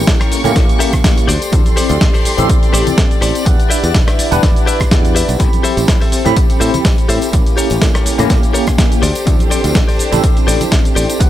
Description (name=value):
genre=filtered disco house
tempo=124 BPM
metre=4/4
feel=swing 55% on 16ths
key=A dorian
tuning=A4 = 443 Hz
part: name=bell-like tine electric piano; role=accompaniment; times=0.0-11.3 s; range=Bb3 to B5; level=-18 LUFS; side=equal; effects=medium stereo tremolo, phaser, sidechain pumping
part: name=warm chamber violin section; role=sustained chords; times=0.0-11.3 s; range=Bb3 to C#6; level=-23 LUFS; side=equal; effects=sidechain pumping
part: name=direct-recorded clean electric guitar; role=riff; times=0.0-11.2 s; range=G4 to G5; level=-22 LUFS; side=left 4 dB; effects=vintage 12-bit sampler grit, sidechain pumping
part: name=modern bright fingered electric bass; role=bass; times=0.0-11.3 s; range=E1 to A2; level=-18 LUFS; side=equal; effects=tube saturation, sidechain pumping
part: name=dusty soul sampler-style drum kit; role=drums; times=0.1-11.3 s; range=hi-hat, rim click, shaker, snare drum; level=-19 LUFS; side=equal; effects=sidechain pumping on hats, sidechain pumping on cymbals, sidechain pumping on perc
part: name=electronic kick drum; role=drums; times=0.1-11.3 s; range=none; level=-13 LUFS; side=equal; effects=none
part: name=tambourine and congas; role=percussion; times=0.1-11.3 s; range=none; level=-26 LUFS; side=right 2 dB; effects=sidechain pumping on perc
room=digital ambience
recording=none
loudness=-10 LUFS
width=side -13 dB against mid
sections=0.0-11.3 A section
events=clean electric guitar fill 0.6-1.5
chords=0.0 A7b9; 1.3 D7sus4; 3.5 Em7; 5.4 Am7; 7.3 A7b9; 9.0 D7sus4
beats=0.07 0.56 1.04 | 1.52 2.01 2.49 2.98 | 3.46 3.94 4.43 4.91 | 5.40 5.88 6.36 6.85 | 7.33 7.82 8.30 8.78 | 9.27 9.75 10.23 10.72 | 11.20